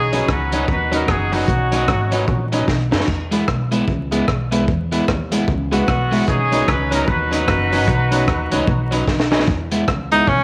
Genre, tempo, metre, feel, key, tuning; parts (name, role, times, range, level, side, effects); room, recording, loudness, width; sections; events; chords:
ska; 150 BPM; 4/4; swing 61% on 8ths; B major; A4 = 440 Hz
warm horn section; melody; 0.0-2.5, 5.7-9.1 s; B3 to B4; -23 LUFS; equal; slapback echo
upright bass; bass; 0.0-10.4 s; F#1 to F#2; -25 LUFS; equal
electric guitar at the edge of break-up; accompaniment; 0.1-10.2 s; F#3 to E4; -25 LUFS; equal
clear upright piano; stabs; 0.1-9.4 s; B3 to B4; -29 LUFS; equal
crunchy breakbeat drum kit; drums; 0.1-10.4 s; hi-hat, kick drum, rim click, snare drum, splash cymbal; -24 LUFS; equal
clear tenor saxophone; melody; 10.1-10.4 s; C#4 to D#4; -16 LUFS; equal
light reverb, small room ambience; vinyl crackle; -18 LUFS; mono
0.0-9.5 A section
drum fill 2.7-3.1, 9.1-9.5
0.0 Badd9; 3.1 E; 6.3 Badd9; 9.5 E